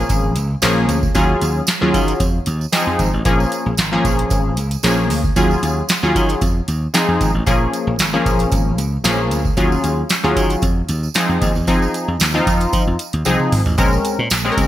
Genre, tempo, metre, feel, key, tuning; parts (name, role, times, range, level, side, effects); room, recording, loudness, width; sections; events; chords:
early-eighties boogie funk; 114 BPM; 4/4; straight; Bb minor; A4 = 436 Hz
funky polysynth comp; accompaniment; 0.0-14.7 s; F3 to Bb4; -18 LUFS; left 1 dB; chorus
slap bass; bass; 0.1-14.7 s; Ab1 to F3; -20 LUFS; equal
booming analog drum machine; drums; 0.1-14.7 s; handclaps, hi-hat, kick drum, snare drum, toms; -19 LUFS; equal; gated reverb
tambourine; percussion; 0.1-14.7 s; -29 LUFS; right 9 dB
moderate plate reverb, RT60 1.6 s; bright 1980s-style digital production; -14 LUFS; side -13 dB against mid
0.0-13.8 A section
drum fill 13.3-13.8
0.0 Bbm7; 1.2 Ebm11; 2.2 Fm7; 3.3 Bbm7; 5.4 Ebm11; 6.4 Fm7; 7.5 Bbm7; 9.6 Ebm11; 10.6 Fm7; 13.8 Bbm9